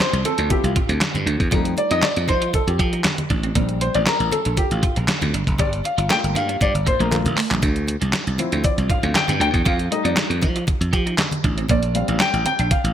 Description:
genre	early-eighties boogie funk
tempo	118 BPM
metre	4/4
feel	straight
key	D minor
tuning	A4 = 440 Hz
part	dark baby grand piano	accompaniment	0.0-12.9 s	F3 to G5	-23 LUFS	left 2 dB	lush chorus
part	clean electric guitar	riff	0.0-12.7 s	G3 to G4	-29 LUFS	right 4 dB	ensemble chorus
part	detuned 8-bit digital drum machine	drums	0.0-12.9 s	handclaps, hi-hat, kick drum, snare drum	-22 LUFS	equal	none
part	congas	percussion	0.0-12.8 s	none	-30 LUFS	left 1 dB	none
part	slap bass	bass	0.1-12.9 s	F1 to F3	-22 LUFS	equal	none
room	moderate plate reverb, RT60 1.9 s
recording	bright 1980s-style digital production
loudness	-17 LUFS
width	side -10 dB against mid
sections	0.0-12.9 A section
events	grand piano solo 0.0-12.9; drum fill 7.1-7.6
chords	0.0 Dm9; 1.5 F7; 3.6 Bb6; 5.3 Gm7; 7.6 Dm9; 9.7 F7; 11.7 Bb6

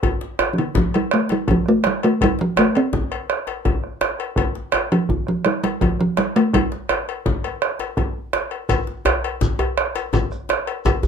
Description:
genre	west african traditional, West African drum ensemble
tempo	111 BPM (dotted quarters)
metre	12/8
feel	straight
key	unclear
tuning	A4 = 440 Hz
part	bombo	percussion	0.0-11.0 s	none	-22 LUFS	right 3 dB	none
part	cowbell	percussion	0.0-11.0 s	none	-27 LUFS	left 8 dB	none
part	djembe	percussion	0.0-11.1 s	none	-27 LUFS	left 4 dB	none
part	talking drum	melody	0.5-7.1 s	D3 to C4	-18 LUFS	right 1 dB	none
part	shekere	percussion	8.7-11.1 s	none	-31 LUFS	right 2 dB	none
part	djembe	percussion	9.1-11.1 s	none	-23 LUFS	equal	none
room	moderate small room reverb, RT60 0.6 s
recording	minimal, uncompressed stereo recording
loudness	-18 LUFS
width	side -7 dB against mid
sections	0.0-8.7 A section; 8.7-11.1 B section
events	none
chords	none

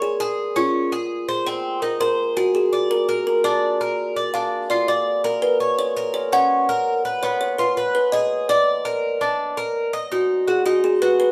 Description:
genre	latin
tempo	166 BPM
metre	4/4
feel	straight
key	unclear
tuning	A4 = 437 Hz
part	kalimba	melody	0.0-11.3 s	F4 to Gb5	-22 LUFS	equal	none
part	Cuban tres	arpeggios	0.0-11.3 s	Cb4 to Eb5	-26 LUFS	equal	none
room	wet studio reverb, RT60 0.7 s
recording	band playing live in one room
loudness	-21 LUFS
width	mono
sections	0.0-10.1 A section; 10.1-11.3 B section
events	none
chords	0.0 Db; 1.5 Abadd9; 2.9 Bb; 5.8 Gb; 7.2 Fdim (rootless); 8.7 Bb; 10.1 Ebm

